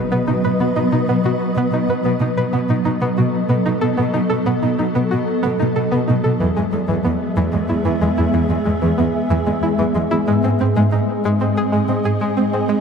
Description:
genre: cinematic, hybrid orchestral and electronic film score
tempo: 62 BPM (dotted quarters)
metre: 6/8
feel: straight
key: unclear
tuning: A4 = 440 Hz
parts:
  - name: swarming drone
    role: sustained chords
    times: 0.0-12.8 s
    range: F#3 to E5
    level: -19 LUFS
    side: equal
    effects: built-in reverb
  - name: string-like resonator pluck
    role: arpeggios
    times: 0.0-12.8 s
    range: E3 to B4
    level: -22 LUFS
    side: equal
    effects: chorus, ping-pong delay
  - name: rich symphonic cello section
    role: bass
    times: 0.0-12.8 s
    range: E2 to B2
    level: -20 LUFS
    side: right 1 dB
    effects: none
  - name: impact and reverse cymbal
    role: sound effects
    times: 0.0-0.6, 12.8 s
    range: none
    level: -47 LUFS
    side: left 1 dB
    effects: none
room: moderate scoring stage reverb, RT60 2.0 s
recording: none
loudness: -16 LUFS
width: side -6 dB against mid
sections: 0.0-12.8 A section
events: impact 0.0-0.6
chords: 0.0 B; 2.5 B7; 6.4 E; 10.3 G#

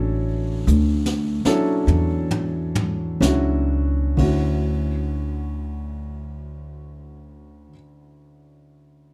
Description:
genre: jazz ballad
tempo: 38-54 BPM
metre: 4/4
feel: swing 66% on 8ths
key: D major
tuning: A4 = 440 Hz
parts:
  - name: vintage hollow-body jazz guitar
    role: melody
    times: 0.0-0.7 s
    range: none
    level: barely audible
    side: none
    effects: none
  - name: warm grand piano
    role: accompaniment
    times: 0.0-9.1 s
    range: D2 to A4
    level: -27 LUFS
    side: equal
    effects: none
  - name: upright bass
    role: bass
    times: 0.0-7.7 s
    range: A1 to E2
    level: -24 LUFS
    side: equal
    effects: none
  - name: jazz brush drum kit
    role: drums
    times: 0.7-4.4 s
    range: hi-hat, kick drum, ride cymbal, snare drum, toms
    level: -30 LUFS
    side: equal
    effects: none
room: little or no reverb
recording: close, detailed microphones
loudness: -22 LUFS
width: mono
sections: 0.0-4.7 A section; 4.7-9.1 B section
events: slowing down 0.0-4.7; drum fill 0.7-3.2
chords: 0.0 Dmaj9

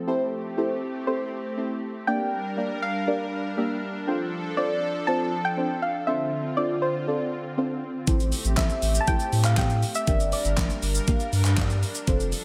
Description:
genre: dance-pop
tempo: 120 BPM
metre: 4/4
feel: straight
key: unclear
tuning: A4 = 439 Hz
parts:
  - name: lush unison pad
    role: sustained chords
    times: 0.0-12.4 s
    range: D3 to Bb4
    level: -34 LUFS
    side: equal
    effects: chorus, sidechain pumping
  - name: deep mellow chord stab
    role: accompaniment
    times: 0.1-12.3 s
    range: Bb3 to F5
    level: -32 LUFS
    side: equal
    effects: chorus, phaser, sidechain pumping, slapback echo
  - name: soft round pluck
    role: melody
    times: 1.1-11.3 s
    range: C5 to A5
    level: -31 LUFS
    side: equal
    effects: chorus, tape echo, slapback echo
  - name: warm sub bass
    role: bass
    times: 8.1-12.3 s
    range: F1 to A2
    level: -27 LUFS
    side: equal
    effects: sidechain pumping
  - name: pop drum kit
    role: drums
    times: 8.1-12.4 s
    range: handclaps, hi-hat, kick drum, shaker, snare drum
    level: -28 LUFS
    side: equal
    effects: overdrive
room: moderate lush hall reverb, RT60 2.1 s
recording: big arena sound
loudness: -26 LUFS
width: mono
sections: 0.1-12.4 A section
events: none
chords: 0.1 Am7; 2.1 Gm; 4.1 F6; 6.1 Dm7; 8.1 Am7; 10.1 Gm

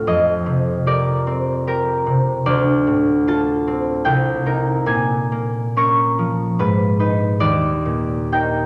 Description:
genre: classical, solo harp piece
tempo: 74 BPM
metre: 3/4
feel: uneven beats, rubato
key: unclear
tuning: A4 = 440 Hz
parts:
  - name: concert harp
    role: solo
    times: 0.0-8.7 s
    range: C2 to Db6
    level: -18 LUFS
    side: equal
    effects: none
room: wet recital hall reverb, RT60 1.7 s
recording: none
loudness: -19 LUFS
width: mono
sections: 0.0-8.7 A section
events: none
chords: 0.1 F9sus4; 2.4 Dm7; 4.1 Cm7; 4.9 Bbm7; 6.6 Abm; 7.4 Ebmaj7

